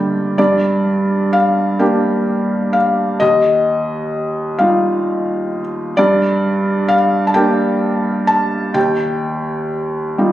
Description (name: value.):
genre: classical, lyrical solo piano.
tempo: 43 BPM (dotted quarters).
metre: 6/8.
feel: rubato.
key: G minor.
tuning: A4 = 439 Hz.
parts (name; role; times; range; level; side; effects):
felt-muted upright piano; solo; 0.0-10.3 s; Eb2 to A5; -14 LUFS; equal; none.
room: moderate concert hall reverb, RT60 1.9 s.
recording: recorded on a phone in the room, club reverb.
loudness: -14 LUFS.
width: side -13 dB against mid.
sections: 0.4-10.3 A section.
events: felt piano fill 0.0-0.4.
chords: 0.4 Gm; 3.2 Ebadd9; 6.0 Gm; 8.8 Eb.